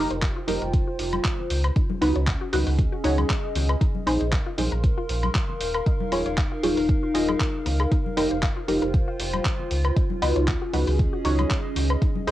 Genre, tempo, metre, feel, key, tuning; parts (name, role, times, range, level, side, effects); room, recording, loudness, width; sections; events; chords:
deep house; 117 BPM; 4/4; swing 54% on 16ths; A4 = 440 Hz
filtered dub chord stab; stabs; 0.0-12.3 s; Eb4 to Eb5; -26 LUFS; right 1 dB; phaser, analog chorus, sidechain pumping, cassette tape, tape echo
sub bass with octave; bass; 0.0-12.3 s; Eb1 to Db2; -26 LUFS; equal; sidechain pumping
warbly tape-like pad; texture; 0.3-12.3 s; Db4 to C6; -29 LUFS; equal; chorus, built-in reverb, phaser, sidechain pumping, cassette tape
analog pluck; arpeggios; 0.1-12.1 s; Eb4 to Gb5; -36 LUFS; left 8 dB; chorus, sidechain pumping, cassette tape, analog delay
dusty soul sampler-style drum kit; drums; 0.1-12.3 s; handclaps, hi-hat, woodblock; -30 LUFS; equal
electronic kick drum; drums; 0.2-12.1 s; -24 LUFS; equal; overdrive
congas; percussion; 0.5-12.3 s; -36 LUFS; left 7 dB
moderate studio reverb, RT60 0.5 s; home recording on cassette; -21 LUFS; side -14 dB against mid
0.0-12.3 A section
0.0 F9sus4; 1.5 Db9sus4; 3.8 Bb9sus4; 5.6 Eb9sus4; 7.9 F9sus4; 9.7 Db9sus4